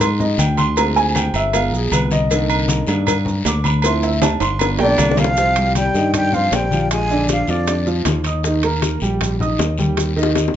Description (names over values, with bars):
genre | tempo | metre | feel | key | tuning
Afro-Cuban jazz | 157 BPM | 4/4 | straight | C minor | A4 = 439 Hz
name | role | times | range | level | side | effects
warm upright piano | accompaniment | 0.0-10.5 s | C3 to Eb6 | -21 LUFS | right 2 dB | none
modern bright fingered electric bass | bass | 0.0-10.5 s | G1 to Ab2 | -20 LUFS | equal | none
agogo bells and timbales | percussion | 0.0-10.5 s | none | -24 LUFS | right 6 dB | none
congas | percussion | 0.0-10.6 s | none | -24 LUFS | left 3 dB | none
cowbell and bongos | percussion | 0.0-10.6 s | none | -25 LUFS | left 7 dB | none
guiro | percussion | 0.0-10.5 s | none | -30 LUFS | left 5 dB | none
maracas | percussion | 0.0-10.6 s | none | -29 LUFS | right 6 dB | none
breathy mellow silver concert flute | melody | 4.8-7.9 s | D5 to Ab5 | -19 LUFS | right 1 dB | none
warm trombone | second line | 4.8-7.9 s | D3 to Ab3 | -25 LUFS | left 4 dB | none
room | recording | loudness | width
wet club reverb, RT60 0.6 s | nothing above 7.7 kHz | -15 LUFS | side -10 dB against mid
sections
0.0-5.4 A section; 5.4-10.6 B section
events
upright piano solo 0.0-5.4; drum fill 4.2-5.4, 10.0-10.6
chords
0.0 Fm9 (rootless); 0.8 Dm7b5; 1.5 G7b9; 2.3 Cm9; 3.8 Dm9; 4.6 G7; 5.4 Cm7; 6.9 Bb7; 8.4 Eb